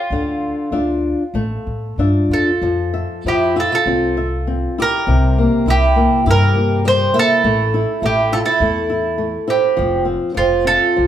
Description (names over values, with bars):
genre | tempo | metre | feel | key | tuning
fado-style ballad | 93-106 BPM | 4/4 | rubato | F major | A4 = 440 Hz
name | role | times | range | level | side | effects
mandolin | melody | 0.0-11.1 s | F4 to C5 | -19 LUFS | right 1 dB | none
flamenco guitar | accompaniment | 0.1-11.1 s | C3 to E5 | -20 LUFS | left 2 dB | none
upright bass | bass | 0.1-11.1 s | F1 to A2 | -20 LUFS | equal | none
fingerpicked twelve-string acoustic guitar | second line | 2.3-11.1 s | C4 to G4 | -20 LUFS | right 4 dB | none
room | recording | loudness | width
wet large studio reverb, RT60 0.9 s | band playing live in one room | -14 LUFS | side -10 dB against mid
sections
0.0-2.6 A section; 2.6-11.1 B section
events
none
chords
0.1 Dmadd9; 2.6 Fmaj7; 5.1 C7; 7.4 A5; 9.8 F